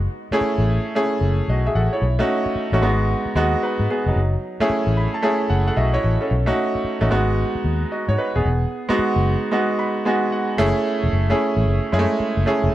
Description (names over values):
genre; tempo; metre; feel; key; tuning
R&B, new jack swing; 112 BPM; 4/4; swing 64% on 16ths; F# dorian; A4 = 441 Hz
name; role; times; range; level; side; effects
vintage muted fingered electric bass; bass; 0.0-12.7 s; D#1 to G#2; -20 LUFS; left 1 dB; none
bright concert grand piano; accompaniment; 0.3-12.7 s; F#3 to B5; -20 LUFS; right 1 dB; none
room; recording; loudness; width
little or no reverb; none; -18 LUFS; side -14 dB against mid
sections
0.0-10.6 A section; 10.6-12.7 B section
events
grand piano fill 4.7-6.3, 9.5-10.6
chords
0.0 F#m7; 2.0 B7; 2.8 G#m7; 4.2 F#m7; 6.3 B7; 7.1 G#m7; 8.4 Emaj7 (rootless); 10.6 F#m7